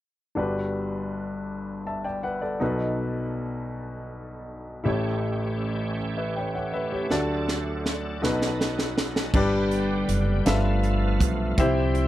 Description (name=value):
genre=slow gospel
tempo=54 BPM (dotted quarters)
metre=6/8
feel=straight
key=G major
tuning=A4 = 441 Hz
part: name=clear baby grand piano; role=accompaniment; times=0.4-12.1 s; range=G1 to A5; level=-26 LUFS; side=left 1 dB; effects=none
part: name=bright tonewheel organ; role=sustained chords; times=4.8-12.1 s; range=D3 to A4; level=-32 LUFS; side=right 3 dB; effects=slow rotary speaker, overdrive, chorus vibrato
part: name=crisp fusion drum kit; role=drums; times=7.1-12.1 s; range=crash cymbal, hi-hat, kick drum, snare drum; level=-26 LUFS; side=right 1 dB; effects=none
part: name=upright bass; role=bass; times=9.3-12.1 s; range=F#1 to C2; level=-25 LUFS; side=equal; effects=none
room=little or no reverb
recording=none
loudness=-24 LUFS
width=side -14 dB against mid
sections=0.4-9.3 A section; 9.3-12.1 B section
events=drum fill 7.1-9.3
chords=0.4 Gmaj7; 2.6 B7; 4.9 A7; 7.1 D; 8.2 B7; 9.3 G; 10.5 G13; 11.6 C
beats=| 0.36 1.49 | 2.61 3.73 | 4.85 5.97 | 7.10 8.22 | 9.34 10.46 | 11.57